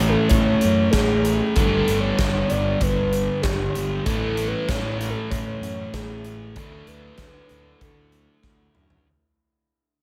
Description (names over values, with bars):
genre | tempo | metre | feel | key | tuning
rock, shoegaze and dream pop | 96 BPM | 4/4 | straight | unclear | A4 = 441 Hz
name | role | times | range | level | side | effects
pure breathy sine lead | melody | 0.0-8.7 s | G4 to D5 | -29 LUFS | equal | chorus, analog delay
crunchy overdriven guitar | riff | 0.0-9.1 s | G2 to A4 | -29 LUFS | equal | reverse reverb
thick fuzz guitar | riff | 0.0-9.1 s | G2 to D4 | -29 LUFS | equal | distortion, analog chorus
fuzz picked electric bass | bass | 0.0-9.0 s | G1 to F#2 | -30 LUFS | equal | overdrive
huge arena drum kit | drums | 0.3-9.0 s | hi-hat, kick drum, snare drum, toms | -28 LUFS | equal | none
room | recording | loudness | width
light reverb, studio ambience | none | -22 LUFS | mono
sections
0.0-9.1 A section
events
fade-out 0.0-9.1; drum fill 8.4-9.1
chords
0.0 Amaj7; 1.6 G; 4.1 Amaj7; 6.6 Dsus2